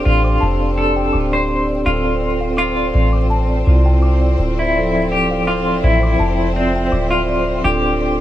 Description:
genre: trip hop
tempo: 83 BPM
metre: 4/4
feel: straight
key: D minor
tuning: A4 = 440 Hz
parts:
  - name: vibraphone with soft mallets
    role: accompaniment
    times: 0.0-8.2 s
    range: F3 to E5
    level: -21 LUFS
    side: right 1 dB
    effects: harmonic tremolo, tape echo
  - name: clear studio violin section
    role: sustained chords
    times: 0.0-8.2 s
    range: C4 to C5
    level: -26 LUFS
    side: equal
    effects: none
  - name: music box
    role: arpeggios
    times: 0.0-8.2 s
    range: D5 to D6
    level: -27 LUFS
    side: left 2 dB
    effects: tape echo
  - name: soft 808-style bass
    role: bass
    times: 0.0-8.2 s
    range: D1 to C2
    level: -18 LUFS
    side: equal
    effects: none
  - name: clean electric guitar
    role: melody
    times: 0.1-8.2 s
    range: C4 to C5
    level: -20 LUFS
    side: left 1 dB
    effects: tremolo, dub echo
room: little or no reverb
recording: dark, warm production, vinyl crackle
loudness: -14 LUFS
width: side -13 dB against mid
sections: 0.0-8.2 A section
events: none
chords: 0.0 G7sus4; 1.9 Dm7; 7.6 G7sus4/D

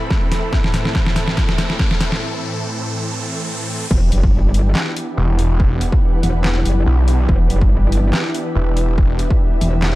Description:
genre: heavy wobble dubstep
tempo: 142 BPM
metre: 4/4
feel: swing 55% on 16ths, half-time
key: E minor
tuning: A4 = 440 Hz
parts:
  - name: supersaw chords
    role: sustained chords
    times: 0.0-10.0 s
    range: A2 to A4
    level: -25 LUFS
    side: right 1 dB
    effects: sidechain pumping, low-pass filter
  - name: riser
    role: sound effects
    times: 0.0-3.9 s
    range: none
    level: -28 LUFS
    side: equal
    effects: none
  - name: ethereal airy pad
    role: texture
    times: 0.0-10.0 s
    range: E4 to B5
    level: -28 LUFS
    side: left 1 dB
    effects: ensemble chorus, built-in reverb, sidechain pumping
  - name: dubstep drum kit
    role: drums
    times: 0.1-9.9 s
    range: crash cymbal, handclaps, hi-hat, snare drum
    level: -22 LUFS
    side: equal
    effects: overdrive, studio reverb
  - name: electronic kick drum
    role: drums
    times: 0.1-9.4 s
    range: none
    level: -17 LUFS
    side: equal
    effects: distortion, studio reverb
  - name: metallic wobble bass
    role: bass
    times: 3.9-10.0 s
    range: E1 to G1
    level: -16 LUFS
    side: equal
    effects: chorus, overdrive
  - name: snarling distorted saw bass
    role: bass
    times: 5.2-9.2 s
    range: E1 to B1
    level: -15 LUFS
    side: equal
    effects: distortion, overdrive
room: digital ambience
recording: dark, warm production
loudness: -15 LUFS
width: side -18 dB against mid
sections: 0.0-3.9 A section; 3.9-10.0 B section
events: build-up 0.0-3.9; drum fill 0.0-2.2; riser 0.0-3.9; break 2.2-3.9; drop 3.9-10.0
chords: 0.0 Am; 3.9 Em7

